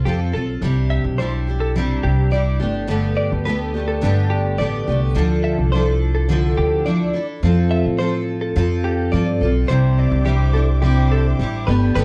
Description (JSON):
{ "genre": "acoustic pop", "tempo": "106 BPM", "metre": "4/4", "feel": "straight", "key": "C major", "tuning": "A4 = 438 Hz", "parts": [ { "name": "picked steel-string acoustic guitar", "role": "accompaniment", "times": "0.0-12.0 s", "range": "G2 to A4", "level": "-22 LUFS", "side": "equal", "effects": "double-tracked" }, { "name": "upright bass", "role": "bass", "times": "0.0-12.0 s", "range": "G1 to A2", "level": "-22 LUFS", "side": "equal", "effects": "transformer saturation" }, { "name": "direct-recorded clean electric guitar", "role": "arpeggios", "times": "0.1-12.0 s", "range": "G4 to E5", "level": "-28 LUFS", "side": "equal", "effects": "ensemble chorus" }, { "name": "dark studio string section", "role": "sustained chords", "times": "9.7-12.0 s", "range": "A4 to D6", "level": "-33 LUFS", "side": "equal", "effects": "none" } ], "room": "moderate studio reverb, RT60 0.8 s", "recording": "worn, warbling old tape, cassette tape, warbly pitch drift", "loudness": "-19 LUFS", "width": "mono", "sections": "0.6-9.7 A section; 9.7-12.0 B section", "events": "none", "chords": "0.0 F; 0.6 Cadd9; 2.6 Gadd9; 5.2 Dmadd9; 7.4 F; 9.7 Cadd9" }